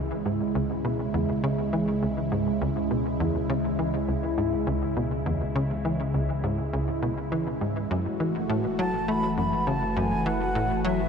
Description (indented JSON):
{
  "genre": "ambient",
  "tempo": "102 BPM",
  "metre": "4/4",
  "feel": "straight",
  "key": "unclear",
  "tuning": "A4 = 440 Hz",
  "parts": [
    { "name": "phased analog pad", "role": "sustained chords", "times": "0.0-11.1 s", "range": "C#3 to F#4", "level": "-27 LUFS", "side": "right 1 dB", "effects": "phaser, chorus" },
    { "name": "tight sequencer bass", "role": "riff", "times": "0.0-11.0 s", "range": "C#2 to A3", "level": "-28 LUFS", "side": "left 1 dB", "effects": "analog chorus, tape echo" },
    { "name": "warm sub bass", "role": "bass", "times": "0.0-11.1 s", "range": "F#1 to C#2", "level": "-37 LUFS", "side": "equal", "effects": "none" },
    { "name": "mellow concert flute", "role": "melody", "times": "8.8-11.1 s", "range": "E5 to B5", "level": "-29 LUFS", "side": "right 1 dB", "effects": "tape echo" }
  ],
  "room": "wet huge ambient reverb, RT60 7.8 s",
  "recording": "dark, warm production",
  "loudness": "-24 LUFS",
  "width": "side -6 dB against mid",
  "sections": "0.0-11.1 A section",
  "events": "fade-in on sub bass 0.0-11.1",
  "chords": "0.0 C#m; 7.9 F#m7"
}